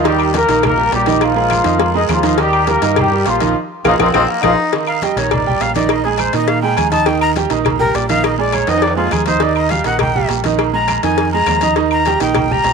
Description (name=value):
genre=latin, salsa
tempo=205 BPM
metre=4/4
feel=straight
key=Eb major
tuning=A4 = 439 Hz
part: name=mellow horn section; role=melody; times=0.0-4.5 s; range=F3 to Eb5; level=-16 LUFS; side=left 3 dB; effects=none
part: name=bright upright piano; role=accompaniment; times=0.0-12.7 s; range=Eb3 to Eb6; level=-18 LUFS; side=right 12 dB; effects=none
part: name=fingered electric bass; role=bass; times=0.0-12.7 s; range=Bb1 to Bb2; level=-22 LUFS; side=left 2 dB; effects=none
part: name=agogo bells and timbales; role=percussion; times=0.0-12.7 s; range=none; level=-23 LUFS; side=right 14 dB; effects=none
part: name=congas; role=percussion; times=0.1-12.7 s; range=none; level=-24 LUFS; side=left 2 dB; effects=none
part: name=cowbell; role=percussion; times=0.1-12.7 s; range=none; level=-22 LUFS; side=left 16 dB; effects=none
part: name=guiro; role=percussion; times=0.1-12.7 s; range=none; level=-32 LUFS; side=left 17 dB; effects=none
part: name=claves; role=percussion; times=0.2-12.5 s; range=none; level=-27 LUFS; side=left 16 dB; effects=none
part: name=warm baritone saxophone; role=second line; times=3.8-4.7 s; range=Bb3 to Eb4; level=-19 LUFS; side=left 3 dB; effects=none
part: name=breathy bright jazz flute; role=melody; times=4.9-12.7 s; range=F4 to Bb5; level=-18 LUFS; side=left 3 dB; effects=none
room=light reverb, small room ambience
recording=1960s-style stereo with parts hard left and right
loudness=-12 LUFS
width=side -5 dB against mid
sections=0.0-4.7 A section; 4.7-12.7 B section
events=band accent 3.6-4.7; flute solo 4.7-12.7; drum fill 8.7-9.4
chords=0.0 Eb; 1.2 Bb7sus4; 2.4 Eb; 3.6 Bb7sus4; 4.7 Ebmaj7; 5.9 Bb7sus4; 7.1 Eb; 8.2 Bb7sus4; 9.4 Eb; 10.6 Bb7sus4; 11.8 Eb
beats=| 0.05 0.34 0.63 0.92 | 1.22 1.51 1.80 2.09 | 2.38 2.68 2.97 3.26 | 3.55 3.85 4.14 4.43 | 4.72 5.02 5.31 5.60 | 5.90 6.19 6.48 6.78 | 7.07 7.36 7.66 7.95 | 8.24 8.54 8.83 9.12 | 9.42 9.71 10.01 10.30 | 10.59 10.89 11.18 11.47 | 11.77 12.06 12.36 12.65